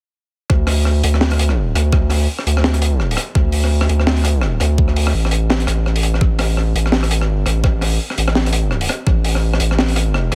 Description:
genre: half-time drum and bass.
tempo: 168 BPM.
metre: 4/4.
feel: swing 59% on 16ths, half-time.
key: unclear.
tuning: A4 = 442 Hz.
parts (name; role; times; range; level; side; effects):
saturated sub bass; bass; 0.5-10.3 s; A1 to D2; -18 LUFS; equal; none.
crunchy breakbeat drum kit; drums; 0.5-10.3 s; hi-hat, rim click, snare drum; -23 LUFS; equal; none.
electronic kick drum; drums; 0.5-9.2 s; none; -17 LUFS; equal; overdrive.
room: little or no reverb.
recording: none.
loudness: -17 LUFS.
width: mono.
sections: 0.5-10.3 A section.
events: drop 0.5-10.3.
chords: none.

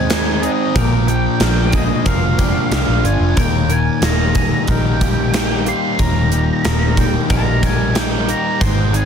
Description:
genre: rock, shoegaze and dream pop.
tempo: 92 BPM.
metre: 4/4.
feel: straight.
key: Eb major.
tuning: A4 = 441 Hz.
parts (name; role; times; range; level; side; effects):
octave-fuzz lead guitar; melody; 0.0-9.1 s; Eb5 to C6; -23 LUFS; right 2 dB; distortion, slapback echo.
twangy electric guitar; arpeggios; 0.0-9.1 s; F4 to Ab5; -28 LUFS; left 7 dB; lush chorus, slapback echo.
overdriven semi-hollow guitar; riff; 0.0-9.1 s; Eb2 to F4; -23 LUFS; right 11 dB; reverse reverb.
thick fuzz guitar; riff; 0.0-9.1 s; Eb2 to F4; -21 LUFS; left 10 dB; distortion, lush chorus.
vintage muted fingered electric bass; bass; 0.0-9.1 s; Eb1 to Eb2; -19 LUFS; equal; none.
gated 80s drum kit; drums; 0.1-9.1 s; hi-hat, kick drum, snare drum; -18 LUFS; equal; none.
room: light reverb, small room ambience.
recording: dense, heavily limited modern master.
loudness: -14 LUFS.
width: side -7 dB against mid.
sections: 0.0-9.1 A section.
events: none.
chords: 0.0 Ab; 0.8 Bb6; 3.4 Eb.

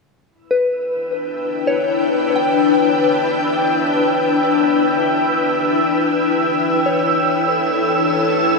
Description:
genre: ambient.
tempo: free time.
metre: none.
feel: none.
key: E dorian.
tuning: A4 = 441 Hz.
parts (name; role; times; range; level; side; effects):
ethereal airy pad; sustained chords; 1.2-8.6 s; D4 to G5; -16 LUFS; left 2 dB; ensemble chorus, built-in reverb.
overtone-sweeping drone; drone; 1.1-8.6 s; E3; -34 LUFS; left 4 dB; chorus, built-in reverb.
wind-like tuned noise texture; texture; 1.4-8.6 s; E6; -23 LUFS; right 3 dB; built-in reverb, lush chorus.
soft synth bell; arpeggios; 0.5-8.6 s; B4 to G5; -22 LUFS; left 2 dB; chorus, diffuse ambient delay.
room: wet huge ambient reverb, RT60 8.3 s.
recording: dreamy mix soaked in reverb, small room ambience.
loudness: -15 LUFS.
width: side -2 dB against mid.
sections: 0.3-8.6 A section.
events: fade-in on synth drone 0.3-8.6.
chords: 0.3 Em7; 6.8 A/E.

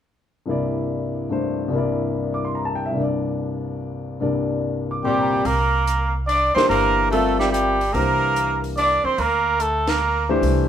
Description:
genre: modal jazz.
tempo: 145 BPM.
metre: 3/4.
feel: swing 66% on 8ths.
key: C mixolydian.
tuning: A4 = 441 Hz.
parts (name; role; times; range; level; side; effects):
warm concert grand piano; accompaniment; 0.5-10.7 s; C2 to D6; -22 LUFS; left 3 dB; none.
trumpet with cup mute; melody; 5.0-10.3 s; G4 to D5; -20 LUFS; right 2 dB; none.
edgy tenor saxophone; second line; 5.1-10.3 s; G3 to D4; -25 LUFS; right 4 dB; none.
upright bass; bass; 5.5-10.7 s; G1 to D2; -24 LUFS; right 1 dB; none.
compact cocktail drum kit; drums; 5.5-10.6 s; hi-hat, ride cymbal, snare drum; -32 LUFS; equal; none.
room: moderate studio reverb, RT60 0.8 s.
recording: band playing live in one room.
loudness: -19 LUFS.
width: side -9 dB against mid.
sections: 0.5-5.5 A section; 5.5-10.7 B section.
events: band accent 9.8.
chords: 0.5 C9; 3.0 Gm/C; 5.5 C9; 7.9 Gm/C.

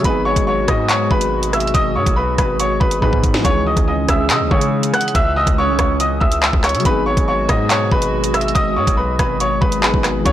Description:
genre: hip hop, drill.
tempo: 141 BPM.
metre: 4/4.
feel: half-time.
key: C# minor.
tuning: A4 = 442 Hz.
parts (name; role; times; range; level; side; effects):
soft electric-piano-like synth keys; accompaniment; 0.0-10.3 s; D#3 to G#4; -24 LUFS; left 1 dB; chorus.
hollow soft pad; sustained chords; 0.0-10.3 s; B2 to F#4; -24 LUFS; left 1 dB; chorus.
distorted 808-style bass; bass; 0.0-10.3 s; G#1 to C#3; -22 LUFS; equal; distortion.
drill drum kit; drums; 0.0-10.3 s; handclaps, hi-hat, kick drum, rim click, snare drum; -18 LUFS; equal; none.
clear upright piano; melody; 0.1-10.3 s; B4 to F#6; -18 LUFS; equal; none.
room: light reverb.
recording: blown-out, overdriven recording, overdrive.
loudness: -14 LUFS.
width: side -12 dB against mid.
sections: 0.0-3.4 A section; 3.4-10.3 A section.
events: drum fill 3.0-3.4.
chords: 0.0 G#m7; 3.4 C#madd9; 6.9 G#m7.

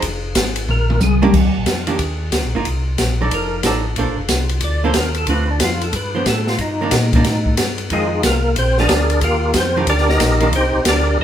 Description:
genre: soul jazz organ trio.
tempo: 183 BPM.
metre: 4/4.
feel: swing 64% on 8ths.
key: unclear.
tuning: A4 = 440 Hz.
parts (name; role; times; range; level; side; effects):
archtop guitar, miked and amplified; accompaniment; 0.0-10.5 s; D3 to D5; -22 LUFS; right 4 dB; none.
tonewheel organ; bass; 0.0-11.2 s; F1 to Bb2; -20 LUFS; equal; slow rotary speaker.
open jazz drum kit; drums; 0.0-11.0 s; crash cymbal, hi-hat, kick drum, ride cymbal, snare drum, toms; -19 LUFS; left 1 dB; none.
percussive tonewheel organ; melody; 0.7-1.2, 3.3-11.2 s; Ab3 to Eb5; -19 LUFS; equal; slow rotary speaker, chorus vibrato.
room: moderate large studio reverb, RT60 0.8 s.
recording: band playing live in one room.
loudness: -15 LUFS.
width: side -10 dB against mid.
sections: 0.0-1.3 A section; 1.3-11.2 A section.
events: tonewheel organ solo 0.0-11.2; drum fill 0.7-1.3.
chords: 0.0 Fm; 0.7 Bb69; 1.3 Ebmaj7; 2.7 Cm11; 3.3 F6; 4.0 Bbmaj9; 5.3 Dm7; 5.9 G7; 6.6 Ebmaj7#11/G; 7.9 Fm7; 8.6 Bb7; 9.2 Ebmaj9; 10.5 Cm9.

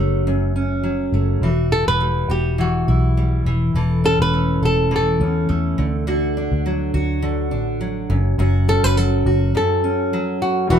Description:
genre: acoustic pop.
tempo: 103 BPM.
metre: 4/4.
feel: swing 55% on 16ths.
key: unclear.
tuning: A4 = 440 Hz.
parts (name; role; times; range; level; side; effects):
fingerpicked steel-string acoustic guitar; accompaniment; 0.0-10.8 s; F#2 to A4; -21 LUFS; equal; none.
vintage muted fingered electric bass; bass; 0.0-10.8 s; E1 to E2; -20 LUFS; equal; none.
flamenco guitar; melody; 1.7-10.8 s; F#4 to B4; -21 LUFS; equal; none.
clear upright piano; accompaniment; 10.7-10.8 s; G3 to B4; -20 LUFS; left 1 dB; none.
room: moderate studio ambience, RT60 0.5 s.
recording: band playing live in one room.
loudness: -17 LUFS.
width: side -8 dB against mid.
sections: 0.0-1.4 A section; 1.4-10.7 B section.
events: break 9.5-10.7.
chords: 0.0 F#m; 1.4 Emadd9; 3.5 A/E; 5.8 D; 8.1 F#m.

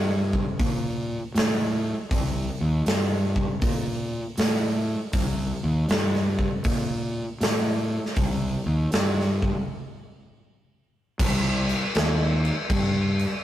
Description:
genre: stoner and doom metal.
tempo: 79 BPM.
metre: 4/4.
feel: swing 66% on 8ths.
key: C dorian.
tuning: A4 = 441 Hz.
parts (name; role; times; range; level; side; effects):
fuzz fingered electric bass; bass; 0.0-13.2 s; C2 to Bb2; -25 LUFS; equal; overdrive.
big rock drum kit; drums; 0.3-13.3 s; crash cymbal, hi-hat, kick drum, snare drum; -26 LUFS; equal; none.
room: light reverb.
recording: rough rehearsal-room recording, tube saturation.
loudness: -22 LUFS.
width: side -12 dB against mid.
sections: 0.0-11.2 A section; 11.2-13.4 B section.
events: break 9.7-11.2.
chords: none.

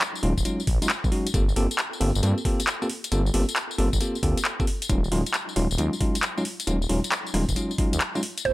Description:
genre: UK garage, two-step garage.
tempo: 135 BPM.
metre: 4/4.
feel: swing 66% on 16ths.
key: unclear.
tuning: A4 = 440 Hz.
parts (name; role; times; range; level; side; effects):
garage drum kit; drums; 0.0-8.5 s; handclaps, hi-hat, rim click, tambourine; -28 LUFS; left 1 dB; none.
bell-like tine electric piano; stabs; 0.2-8.5 s; Gb3 to A4; -28 LUFS; equal; digital delay.
dark detuned saw bass; bass; 0.2-8.5 s; Eb1 to G2; -24 LUFS; equal; sidechain pumping.
electronic kick drum; drums; 0.4-8.5 s; none; -26 LUFS; equal; none.
mallet-like synth pluck; melody; 8.5 s; C5; -20 LUFS; right 7 dB; chorus.
room: digital ambience.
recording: none.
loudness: -22 LUFS.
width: side -18 dB against mid.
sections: 0.0-8.5 A section.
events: break 8.0-8.5.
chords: 0.0 Ebm11; 1.3 Gm11; 4.7 Ebm11.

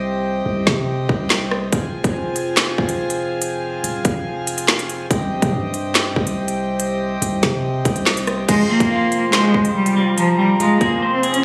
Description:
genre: hip hop, drill.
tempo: 142 BPM.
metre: 4/4.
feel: half-time.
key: F minor.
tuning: A4 = 440 Hz.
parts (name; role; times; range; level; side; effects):
pedal harmonium; sustained chords; 0.0-11.4 s; C3 to F5; -27 LUFS; equal; none.
long sustained 808-style bass; bass; 0.0-11.4 s; Eb1 to C3; -28 LUFS; equal; none.
drill drum kit; drums; 0.7-11.4 s; crash cymbal, handclaps, hi-hat, kick drum, rim click, snare drum; -20 LUFS; equal; none.
rich cello; melody; 8.5-11.4 s; F3 to Db4; -18 LUFS; equal; low-pass filter.
silver concert flute; second line; 8.5-11.0 s; Bb5 to C6; -28 LUFS; equal; digital delay.
clean electric guitar; accompaniment; 8.5-11.4 s; F3 to C5; -25 LUFS; equal; low-pass filter.
room: small room ambience.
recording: recorded on a phone in the room, studio reverb.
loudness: -19 LUFS.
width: mono.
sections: 0.0-8.5 A section; 8.5-11.4 B section.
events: break 0.0-1.7.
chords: 0.0 Cm; 1.7 Fm; 5.1 Cm; 8.5 Fm.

